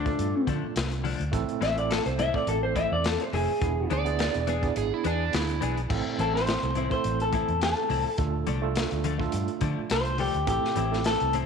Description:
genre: straight-eighth soul blues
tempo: 105 BPM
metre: 4/4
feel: swing 54% on 16ths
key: A minor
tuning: A4 = 440 Hz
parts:
  - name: electric guitar through a small old amp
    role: melody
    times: 0.0-11.3 s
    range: D4 to E5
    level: -28 LUFS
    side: left 2 dB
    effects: none
  - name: overdriven tine electric piano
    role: accompaniment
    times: 0.0-11.4 s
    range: A3 to A4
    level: -32 LUFS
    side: right 13 dB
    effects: fast tremolo
  - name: direct-recorded clean electric guitar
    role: stabs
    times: 0.0-11.5 s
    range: A2 to G#4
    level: -34 LUFS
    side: left 10 dB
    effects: analog chorus, slapback echo
  - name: vintage muted fingered electric bass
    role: bass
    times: 0.0-11.5 s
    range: E1 to D3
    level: -30 LUFS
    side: equal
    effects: none
  - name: crunchy breakbeat drum kit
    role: drums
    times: 0.1-11.5 s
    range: crash cymbal, hi-hat, kick drum, snare drum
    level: -32 LUFS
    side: left 3 dB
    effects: none
  - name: overdriven slide guitar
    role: second line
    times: 3.9-5.8 s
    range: D4 to D5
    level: -30 LUFS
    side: right 11 dB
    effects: none
room: light reverb, small room ambience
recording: 1960s-style stereo with parts hard left and right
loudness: -24 LUFS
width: side -6 dB against mid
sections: 0.0-5.9 A section; 5.9-11.5 A section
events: none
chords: 0.0 Dm; 1.3 Am; 3.6 E7; 5.9 Am; 8.2 Dm; 10.5 Am

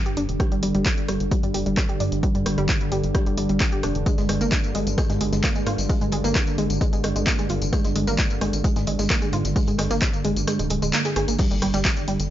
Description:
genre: driving peak-time techno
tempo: 131 BPM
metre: 4/4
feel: straight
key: unclear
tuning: A4 = 439 Hz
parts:
  - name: deep dark ambient pad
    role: drone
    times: 0.0-12.3 s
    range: G2 to D3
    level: -28 LUFS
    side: right 2 dB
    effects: chorus, built-in reverb, sidechain pumping
  - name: analog pluck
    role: riff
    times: 0.1-12.2 s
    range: G3 to Ab4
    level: -26 LUFS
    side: equal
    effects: chorus, tube saturation, sidechain pumping, analog delay
  - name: punchy analog drum machine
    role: drums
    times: 0.1-12.3 s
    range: crash cymbal, handclaps, hi-hat, rim click, tambourine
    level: -28 LUFS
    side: equal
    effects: overdrive
  - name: tight sequencer bass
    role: bass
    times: 0.2-12.3 s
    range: Eb1 to Ab2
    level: -27 LUFS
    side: equal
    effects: tube saturation, sidechain pumping
  - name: electronic kick drum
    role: drums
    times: 0.4-11.9 s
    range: none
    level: -23 LUFS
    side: equal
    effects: none
  - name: modern studio drum kit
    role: drums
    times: 4.1-12.2 s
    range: hi-hat, snare drum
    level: -42 LUFS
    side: left 2 dB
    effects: none
  - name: impact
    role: sound effects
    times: 11.4-12.3 s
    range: none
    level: -34 LUFS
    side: equal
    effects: none
room: light reverb, digital ambience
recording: dry, gritty hardware recording, transformer saturation, nothing above 7.5 kHz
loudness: -20 LUFS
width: side -12 dB against mid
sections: 0.0-11.4 A section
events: kick drops out 10.5-11.4; band accent 10.9; impact 11.4-12.3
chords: 0.0 G5; 4.1 Ab5; 11.4 G5

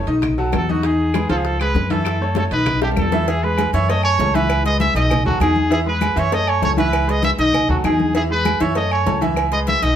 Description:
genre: latin, salsa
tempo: 197 BPM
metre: 4/4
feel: straight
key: E major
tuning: A4 = 440 Hz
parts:
  - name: bright upright piano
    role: accompaniment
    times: 0.0-10.0 s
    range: D#3 to F5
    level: -21 LUFS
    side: equal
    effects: none
  - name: upright bass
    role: bass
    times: 0.1-10.0 s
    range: B1 to F#2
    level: -21 LUFS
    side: equal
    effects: none
  - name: bongos and cowbell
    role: percussion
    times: 0.1-10.0 s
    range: none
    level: -30 LUFS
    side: left 4 dB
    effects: none
  - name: congas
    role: percussion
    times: 0.1-10.0 s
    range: none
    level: -26 LUFS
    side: left 4 dB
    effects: none
  - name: timbales and agogo bells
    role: percussion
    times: 0.1-10.0 s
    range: none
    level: -26 LUFS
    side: right 7 dB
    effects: none
  - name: claves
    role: percussion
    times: 0.2-9.5 s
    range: none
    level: -34 LUFS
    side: left 5 dB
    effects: none
  - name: bright trumpet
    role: melody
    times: 0.6-10.0 s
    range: F#4 to E5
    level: -21 LUFS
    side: right 1 dB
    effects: none
room: moderate studio reverb, RT60 0.6 s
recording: band playing live in one room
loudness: -15 LUFS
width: side -9 dB against mid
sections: 0.0-3.3 A section; 3.3-10.0 B section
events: drum fill 2.8-3.3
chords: 0.2 B7; 0.8 Emaj7; 1.4 C#7; 2.1 F#m7; 2.7 Baug7; 3.3 E; 3.9 F#m7; 4.5 C#m7; 5.1 B7; 5.7 E; 6.3 F#m7; 6.9 C#m7; 7.5 B7; 8.1 E; 8.8 F#m7; 9.4 C#m7

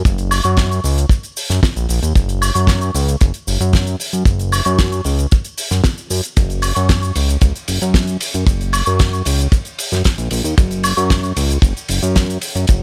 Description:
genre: nu-disco, nu disco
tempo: 114 BPM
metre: 4/4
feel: straight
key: F# major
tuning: A4 = 442 Hz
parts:
  - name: fat analog bass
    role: bass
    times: 0.0-12.8 s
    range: F#1 to F#2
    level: -19 LUFS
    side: equal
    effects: none
  - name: damped 70s drum kit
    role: drums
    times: 0.1-12.8 s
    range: cabasa, hi-hat, ride cymbal, snare drum, woodblock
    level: -23 LUFS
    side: equal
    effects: studio ambience
  - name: kick drum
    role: drums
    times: 0.1-12.8 s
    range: none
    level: -15 LUFS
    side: equal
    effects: studio ambience
room: little or no reverb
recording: none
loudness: -16 LUFS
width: mono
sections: 0.0-12.8 A section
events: none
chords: none

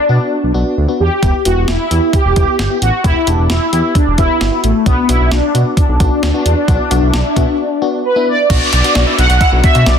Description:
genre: synth-pop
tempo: 132 BPM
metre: 4/4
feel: straight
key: unclear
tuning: A4 = 440 Hz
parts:
  - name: mellow synth brass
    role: melody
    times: 0.0-10.0 s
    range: A3 to F#5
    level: -15 LUFS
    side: equal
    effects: chorus, phaser, ping-pong delay
  - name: FM electric piano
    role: accompaniment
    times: 0.1-10.0 s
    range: B3 to G4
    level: -21 LUFS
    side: left 2 dB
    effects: chorus, tremolo
  - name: smooth synth bass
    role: bass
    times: 0.1-10.0 s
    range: E1 to B2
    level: -14 LUFS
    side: equal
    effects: none
  - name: clean 12-bit digital drum machine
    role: drums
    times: 1.2-10.0 s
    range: crash cymbal, hi-hat, kick drum, snare drum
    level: -16 LUFS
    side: equal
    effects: overdrive
  - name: swell and downlifter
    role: sound effects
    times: 6.7-10.0 s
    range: none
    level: -22 LUFS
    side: left 1 dB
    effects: none
  - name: bluegrass banjo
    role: arpeggios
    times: 8.5-9.9 s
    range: E4 to G4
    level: -23 LUFS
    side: right 5 dB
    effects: ping-pong delay
room: light reverb, digital ambience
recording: dense, heavily limited modern master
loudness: -11 LUFS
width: side -8 dB against mid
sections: 0.0-8.5 A section; 8.5-10.0 B section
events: swell 6.7-8.5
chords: 0.0 Bm; 1.2 Em; 4.9 Bm

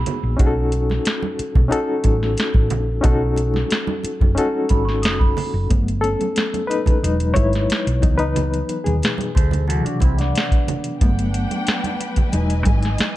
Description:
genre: lush 1970s-style soul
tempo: 90 BPM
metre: 4/4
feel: straight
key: unclear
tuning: A4 = 436 Hz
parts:
  - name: bright reed electric piano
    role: accompaniment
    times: 0.0-13.2 s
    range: B2 to C#5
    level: -22 LUFS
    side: left 2 dB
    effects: fast tremolo
  - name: hollow-body short-scale fingered electric bass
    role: bass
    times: 0.0-13.0 s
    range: E1 to D#2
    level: -21 LUFS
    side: equal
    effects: none
  - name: worn celesta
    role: texture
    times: 0.0-0.4, 4.7-5.7 s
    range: B5 to D#6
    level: -29 LUFS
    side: right 8 dB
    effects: stereo widening
  - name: soft vintage rhythm box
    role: drums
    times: 0.1-13.2 s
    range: hi-hat, kick drum, snare drum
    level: -19 LUFS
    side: equal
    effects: none
  - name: congas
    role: percussion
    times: 0.1-12.8 s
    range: none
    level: -30 LUFS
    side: right 6 dB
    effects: none
  - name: electric guitar through a small old amp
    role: riff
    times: 9.3-11.0 s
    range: B3 to C5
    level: -27 LUFS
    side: right 1 dB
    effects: phaser
  - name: warm studio string section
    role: sustained chords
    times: 11.0-13.2 s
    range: E3 to G#5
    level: -27 LUFS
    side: left 2 dB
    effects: none
room: light reverb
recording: dark, warm production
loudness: -17 LUFS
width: side -15 dB against mid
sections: 0.0-5.7 A section; 5.7-13.2 B section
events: reed electric piano solo 5.7-13.2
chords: 0.4 B9; 5.7 Gmaj7; 7.0 Emaj7; 8.0 C#m11; 9.3 D9; 11.0 Gmaj7; 12.3 Emaj7

